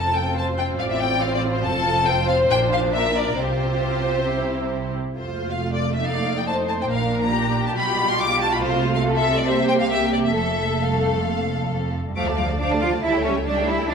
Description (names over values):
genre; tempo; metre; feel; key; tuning
quick classical-period movement for string orchestra; 139 BPM; 4/4; straight; F major; A4 = 441 Hz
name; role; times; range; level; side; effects
rich symphonic violin section; melody; 0.0-13.9 s; C5 to D6; -24 LUFS; left 3 dB; none
rich symphonic violin section; second line; 0.0-13.9 s; F4 to F5; -26 LUFS; left 3 dB; none
warm symphonic viola section; accompaniment; 0.0-13.9 s; F3 to A4; -26 LUFS; right 2 dB; none
rich symphonic cello section; bass; 0.0-13.9 s; C2 to F4; -27 LUFS; right 3 dB; none
warm symphonic double bass section; bass; 0.0-13.9 s; F1 to D2; -28 LUFS; right 3 dB; none
room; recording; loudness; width
wet scoring stage reverb, RT60 1.5 s; minimal, uncompressed stereo recording; -19 LUFS; side -6 dB against mid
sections
0.0-12.2 A section; 12.2-13.9 B section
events
none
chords
0.0 F; 0.8 F/A; 1.7 F; 2.5 Bb; 3.4 Csus4; 4.3 C; 5.2 F; 6.0 F7; 6.9 Bb; 7.8 G7/B; 8.6 F/C; 9.5 C5; 10.3 F; 12.2 Dm; 13.0 A7/C#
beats
0.37 0.79 1.22 | 1.65 2.08 2.51 2.95 | 3.39 3.84 4.28 4.72 | 5.17 5.61 6.04 6.47 | 6.90 7.33 7.75 8.18 | 8.60 9.03 9.46 9.90 | 10.35 10.80 11.26 11.71 | 12.16 12.59 13.03 13.46 | 13.89